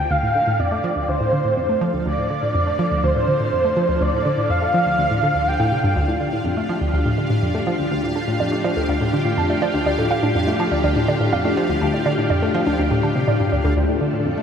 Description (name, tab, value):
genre	ambient, sequencer-driven space music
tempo	123 BPM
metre	4/4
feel	straight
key	D minor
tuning	A4 = 440 Hz
part	breathy flute-like synth lead	melody	0.0-6.0 s	C5 to G5	-21 LUFS	right 1 dB	ensemble chorus, tape echo
part	string machine, full ensemble	sustained chords	0.0-14.4 s	D4 to A4	-25 LUFS	left 1 dB	ensemble chorus
part	analog pluck	riff	0.0-14.4 s	D2 to A3	-21 LUFS	equal	chorus, tape echo
part	bubbling stepped-filter texture	texture	0.2-14.4 s	D5 to F5	-33 LUFS	right 3 dB	chorus, built-in reverb
part	warbly dusty pluck	arpeggios	6.0-14.4 s	D4 to A5	-25 LUFS	moving between left 1 dB and right 5 dB	chorus, auto-pan, tape echo
room	wet cathedral reverb, RT60 5.1 s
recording	in a vast, echoing space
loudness	-17 LUFS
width	side -7 dB against mid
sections	0.0-13.8 A section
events	fade-in on string machine 0.0-13.8; fade-in on synth texture 0.0-13.8; filter sweep on synth arpeggio sound 0.0-13.8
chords	0.0 Dm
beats	| 0.11 0.60 1.08 1.57 | 2.06 2.55 3.04 3.52 | 4.01 4.50 4.99 5.47 | 5.96 6.45 6.94 7.42 | 7.91 8.40 8.89 9.38 | 9.86 10.35 10.84 11.33 | 11.81 12.30 12.79 13.28 | 13.77 14.25